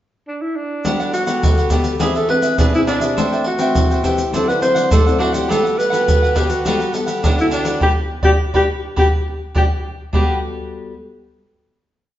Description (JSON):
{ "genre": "samba and choro", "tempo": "103 BPM", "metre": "4/4", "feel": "straight", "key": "G major", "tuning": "A4 = 438 Hz", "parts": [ { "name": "breathy alto saxophone", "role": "melody", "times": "0.3-10.4 s", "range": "D4 to C5", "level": "-19 LUFS", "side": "equal", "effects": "none" }, { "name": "cavaquinho", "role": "accompaniment", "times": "0.8-10.4 s", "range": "D4 to G5", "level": "-24 LUFS", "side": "right 2 dB", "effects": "none" }, { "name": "nylon-string guitar", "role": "accompaniment", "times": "0.8-10.9 s", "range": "A2 to B4", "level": "-22 LUFS", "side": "left 2 dB", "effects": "none" }, { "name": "tube shaker, surdo and pandeiro", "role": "percussion", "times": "0.8-10.3 s", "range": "none", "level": "-18 LUFS", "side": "equal", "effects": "none" } ], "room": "wet stone room reverb, RT60 1.3 s", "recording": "band playing live in one room, nothing above 7.6 kHz", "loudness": "-15 LUFS", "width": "side -12 dB against mid", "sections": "0.0-0.9 pickup bar; 0.9-10.1 A section; 10.1-12.2 final chord", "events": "band accent 7.8-10.1", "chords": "0.0 N.C.; 0.9 Gmaj9; 2.0 E7b13; 3.2 Am9; 4.3 D9; 5.5 Gmaj9" }